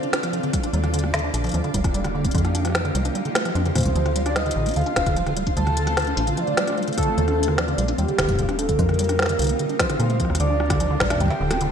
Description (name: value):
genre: IDM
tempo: 149 BPM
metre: 4/4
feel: straight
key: D phrygian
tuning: A4 = 439 Hz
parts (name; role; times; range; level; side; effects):
- warm velvety synth lead; melody; 0.0-0.5, 3.8-11.7 s; G4 to A5; -26 LUFS; right 1 dB; chorus, tremolo, vintage 12-bit sampler grit, ping-pong delay
- granular cloud pad; sustained chords; 0.0-11.7 s; A3 to D5; -30 LUFS; left 1 dB; built-in reverb, sidechain pumping
- deep acid bass; arpeggios; 0.0-11.7 s; D3 to D4; -27 LUFS; right 2 dB; lush chorus, ping-pong delay
- organic electronic drum kit; drums; 0.0-11.7 s; cowbell, hi-hat, rim click, snare drum; -26 LUFS; left 1 dB; studio reverb, gated reverb
- flickering grainy texture; texture; 0.0-11.7 s; F4 to A5; -35 LUFS; equal; built-in reverb, analog chorus
- electronic kick drum; drums; 0.5-11.3 s; none; -25 LUFS; equal; studio reverb
- metallic FM bass; bass; 0.7-11.7 s; D1 to Bb2; -24 LUFS; equal; none
room: moderate plate reverb, RT60 2.2 s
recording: bright 1980s-style digital production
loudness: -19 LUFS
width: side -8 dB against mid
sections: 0.0-10.4 A section; 10.4-11.7 B section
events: drum fill 10.2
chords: 0.0 Dm7; 0.7 Ebmaj7; 2.3 F9sus4; 4.0 Dm7; 7.2 Ebmaj7; 8.8 F9sus4; 10.4 Dm7